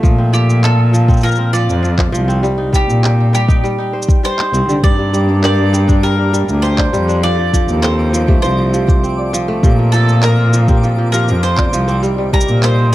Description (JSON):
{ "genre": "folktronica", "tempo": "100 BPM", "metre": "4/4", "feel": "straight", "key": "unclear", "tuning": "A4 = 440 Hz", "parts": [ { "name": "kora", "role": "arpeggios", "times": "0.0-12.9 s", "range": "F3 to C5", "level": "-20 LUFS", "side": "equal", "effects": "tape echo" }, { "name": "clear cello", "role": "bass", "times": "0.0-12.9 s", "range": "C2 to D3", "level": "-14 LUFS", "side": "equal", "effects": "none" }, { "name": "electronic cabasa and handclaps", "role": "drums", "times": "0.0-12.8 s", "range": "none", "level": "-24 LUFS", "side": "equal", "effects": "none" }, { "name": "electronic kick drum", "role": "drums", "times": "0.0-12.5 s", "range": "none", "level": "-13 LUFS", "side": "equal", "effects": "none" }, { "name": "bowl-back mandolin", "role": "melody", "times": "0.3-12.9 s", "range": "G4 to D5", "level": "-20 LUFS", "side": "equal", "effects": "tape echo" }, { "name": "folk marimba with soft mallets", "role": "second line", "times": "4.8-12.8 s", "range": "G4 to D5", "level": "-26 LUFS", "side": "right 3 dB", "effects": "tape echo" }, { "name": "pedal harmonium", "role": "sustained chords", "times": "4.8-12.9 s", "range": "C3 to A4", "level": "-27 LUFS", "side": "left 1 dB", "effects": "none" }, { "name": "twinkling granular texture", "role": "texture", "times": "5.2-12.9 s", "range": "D6", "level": "-33 LUFS", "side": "right 1 dB", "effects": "built-in reverb" } ], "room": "little or no reverb", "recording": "dry, close 1970s-style studio recording", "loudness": "-11 LUFS", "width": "side -15 dB against mid", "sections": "0.0-12.9 A section", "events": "none", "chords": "0.0 Bbsus2; 2.4 Cm; 4.8 Gm; 7.2 Fadd9; 9.6 Bbsus2; 12.0 Cm" }